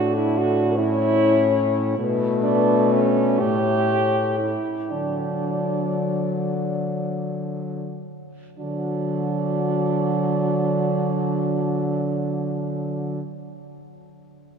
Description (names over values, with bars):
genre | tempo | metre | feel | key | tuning
classical, lyrical piece for horn quartet | 29-51 BPM (dotted quarters) | 6/8 | rubato | D major | A4 = 435 Hz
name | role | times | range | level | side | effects
warm French horn | melody | 0.0-13.2 s | F#4 to D5 | -27 LUFS | left 8 dB | none
warm French horn | second line | 0.0-13.2 s | C#4 to G4 | -25 LUFS | right 6 dB | none
mellow French horn | accompaniment | 0.0-13.2 s | F#3 to D4 | -26 LUFS | left 2 dB | none
warm French horn | bass | 0.0-13.2 s | A2 to D3 | -27 LUFS | right 1 dB | none
room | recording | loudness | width
wet cathedral reverb, RT60 4.3 s | none | -20 LUFS | side -6 dB against mid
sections
0.0-8.6 A section; 8.6-12.4 B section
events
slowing down 0.8-8.6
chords
0.0 A; 2.0 Bm9; 3.4 A7; 4.9 D